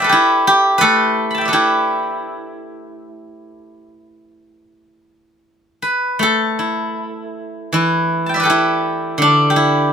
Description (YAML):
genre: chinese traditional, Chinese solo plucked strings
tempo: 70-84 BPM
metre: 4/4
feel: rubato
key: E yu mode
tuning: A4 = 440 Hz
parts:
  - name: steel-string zither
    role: solo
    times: 0.0-9.9 s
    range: D3 to B5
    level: -14 LUFS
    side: equal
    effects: none
room: moderate studio reverb, RT60 0.5 s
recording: band playing live in one room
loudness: -13 LUFS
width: side -7 dB against mid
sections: 0.0-6.2 A section; 6.2-9.9 B section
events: none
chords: none